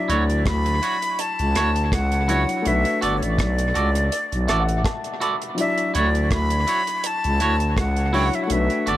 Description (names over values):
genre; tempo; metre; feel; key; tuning
lovers rock reggae; 82 BPM; 4/4; swing 55% on 16ths; D major; A4 = 441 Hz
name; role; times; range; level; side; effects
breathy bright jazz flute; melody; 0.0-9.0 s; C#5 to B5; -24 LUFS; left 1 dB; tape echo
warm grand piano; accompaniment; 0.0-9.0 s; F#3 to B5; -28 LUFS; left 3 dB; dub echo
twangy electric guitar; stabs; 0.1-9.0 s; E4 to D5; -26 LUFS; right 4 dB; dub echo
growling FM bass; bass; 0.1-9.0 s; G1 to D2; -22 LUFS; equal; none
deep reggae drum kit; drums; 0.1-9.0 s; hi-hat, kick drum, rim click; -28 LUFS; right 1 dB; dub echo
room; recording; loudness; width
light reverb, studio ambience; none; -19 LUFS; side -14 dB against mid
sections
0.0-9.0 A section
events
grand piano fill 4.1-5.6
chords
0.0 Dmaj9; 2.6 Bm7; 5.6 Dmaj9